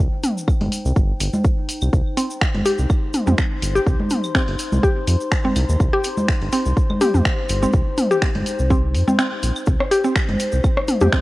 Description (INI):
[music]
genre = minimal techno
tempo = 124 BPM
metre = 4/4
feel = swing 54% on 16ths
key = C minor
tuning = A4 = 440 Hz
[part]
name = round analog bass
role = bass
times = 0.0-11.1 s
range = G1 to F2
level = -20 LUFS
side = equal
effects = sidechain pumping
[part]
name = egg shaker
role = percussion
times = 0.0-11.2 s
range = none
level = -35 LUFS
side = left 1 dB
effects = none
[part]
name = warbly tape-like pad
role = texture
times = 0.0-11.2 s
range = Eb4 to C6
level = -29 LUFS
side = left 2 dB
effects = chorus, built-in reverb, sidechain pumping, cassette tape
[part]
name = punchy analog drum machine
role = drums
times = 0.2-11.2 s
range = finger snaps, hi-hat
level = -26 LUFS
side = equal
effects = overdrive, cassette tape
[part]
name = organic electronic drum kit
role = percussion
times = 0.2-11.1 s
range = claves, congas, rim click, toms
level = -23 LUFS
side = equal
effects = overdrive, cassette tape, tape echo
[part]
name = electronic kick drum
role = drums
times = 0.5-11.2 s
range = none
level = -19 LUFS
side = equal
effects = cassette tape
[part]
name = mallet-like synth pluck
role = riff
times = 2.2-11.2 s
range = C4 to G4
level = -22 LUFS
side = equal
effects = chorus, sidechain pumping, cassette tape, tape echo
[sound]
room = light reverb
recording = home recording on cassette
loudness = -17 LUFS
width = side -18 dB against mid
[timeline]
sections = 0.0-11.2 A section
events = fade-in on ambient pad 0.0-11.2; break 9.2-9.7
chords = 0.0 Cm